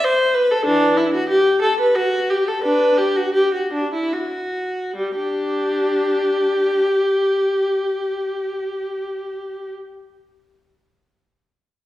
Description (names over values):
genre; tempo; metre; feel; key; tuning
classical, baroque-style suite movement for unaccompanied viola; 68-97 BPM; 3/4; rubato; G major; A4 = 440 Hz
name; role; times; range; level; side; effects
rich viola; solo; 0.0-9.7 s; E3 to C5; -17 LUFS; equal; none
room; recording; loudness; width
wet recital hall reverb, RT60 1.4 s; heard from further back in the room; -17 LUFS; side -14 dB against mid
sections
0.0-5.0 A section; 5.0-9.9 B section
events
slowing down 0.0-5.0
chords
none